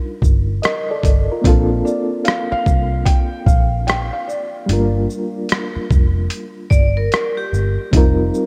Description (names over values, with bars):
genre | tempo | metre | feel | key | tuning
lo-fi hip hop | 74 BPM | 4/4 | swing 65% on 16ths | Bb major | A4 = 439 Hz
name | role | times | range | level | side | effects
reed electric piano | accompaniment | 0.0-8.5 s | G3 to Eb5 | -24 LUFS | equal | fast tremolo, cassette tape
vintage muted picked electric bass | bass | 0.2-8.3 s | F1 to C2 | -21 LUFS | equal | none
boom bap sampler-style drum kit | drums | 0.2-8.5 s | hi-hat, kick drum, rim click, shaker | -18 LUFS | equal | none
felt-muted upright piano | melody | 1.8-5.0 s | D5 to G5 | -26 LUFS | equal | subtle chorus, analog delay
vibraphone with hard mallets | second line | 6.7-7.9 s | G4 to D5 | -25 LUFS | equal | analog delay
room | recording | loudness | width
light reverb, digital ambience | none | -17 LUFS | mono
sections
0.0-8.5 A section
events
none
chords
0.0 Ebmaj7; 1.4 Bbmaj7; 4.7 Gm7; 7.9 F7sus4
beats
0.63 | 1.44 2.25 3.06 3.87 | 4.68 5.50 6.30 7.12 | 7.93